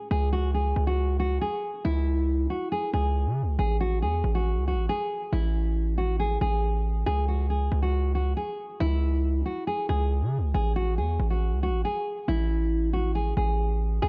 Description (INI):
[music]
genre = hip hop, drill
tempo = 138 BPM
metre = 4/4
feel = half-time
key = C# minor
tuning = A4 = 438 Hz
[part]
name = nylon-string guitar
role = melody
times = 0.0-14.1 s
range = E4 to G#4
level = -31 LUFS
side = equal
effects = low-pass filter
[part]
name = warm analog pad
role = sustained chords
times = 0.0-0.1, 14.0-14.1 s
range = G#3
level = -59 LUFS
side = equal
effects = none
[part]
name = hard-hitting 808-style bass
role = bass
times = 0.1-14.1 s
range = A1 to C#3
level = -28 LUFS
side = equal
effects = none
[sound]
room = small room reverb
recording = dark, warm production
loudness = -27 LUFS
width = mono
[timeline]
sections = 0.1-14.0 A section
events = none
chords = 0.1 C#5; 3.6 Amaj7(no3); 7.1 C#5; 10.5 Amaj7(no3)